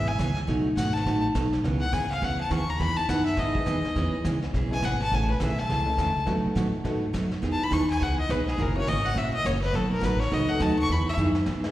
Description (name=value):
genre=country, western swing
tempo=208 BPM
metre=4/4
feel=swing 61% on 8ths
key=E major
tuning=A4 = 440 Hz
part: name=clear fiddle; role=melody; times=0.0-11.2 s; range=G#4 to C#6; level=-29 LUFS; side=left 2 dB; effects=slapback echo
part: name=picked steel-string acoustic guitar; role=accompaniment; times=0.0-11.7 s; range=B2 to G#4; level=-28 LUFS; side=right 2 dB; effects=slapback echo
part: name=upright bass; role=bass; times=0.0-11.7 s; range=F#1 to B2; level=-28 LUFS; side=equal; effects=none
part: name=vintage brush drum kit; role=drums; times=0.2-11.7 s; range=brushed snare drum, hi-hat, kick drum, snare drum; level=-35 LUFS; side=equal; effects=slapback echo
part: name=tack piano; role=accompaniment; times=3.5-11.7 s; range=G#3 to A#4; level=-35 LUFS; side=left 3 dB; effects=slapback echo
room=moderate lush hall reverb, RT60 1.9 s, small room ambience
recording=live gig heard through the venue's PA, recital hall reverb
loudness=-23 LUFS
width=side -14 dB against mid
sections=0.0-11.7 A section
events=fiddle solo 0.0-11.7; drum fill 11.2-11.7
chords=0.5 B7; 1.6 C#m7; 2.8 Emaj7; 4.0 C#m7; 5.1 Amaj7; 6.3 B7; 7.4 Emaj7; 8.6 F#7; 9.7 B7; 10.9 Emaj9